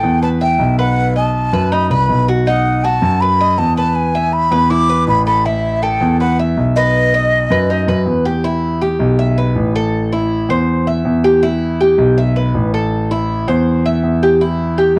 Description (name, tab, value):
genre	latin, Cuban son and guajira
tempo	161 BPM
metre	4/4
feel	straight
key	E minor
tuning	A4 = 440 Hz
part	breathy jazz flute	melody	0.0-8.0 s	D#5 to D6	-18 LUFS	equal	none
part	Cuban tres	arpeggios	0.0-15.0 s	D#4 to E5	-20 LUFS	equal	none
part	warm concert grand piano	bass	0.0-15.0 s	A1 to F#2	-18 LUFS	equal	none
room	light reverb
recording	worn, warbling old tape, cassette tape, warbly pitch drift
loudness	-15 LUFS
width	mono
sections	0.0-8.4 A section; 8.4-15.0 B section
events	none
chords	0.0 Asus2; 1.0 B; 4.0 Asus2; 7.0 B; 8.4 Em; 9.9 Am; 11.4 Em; 12.9 Am; 14.4 Em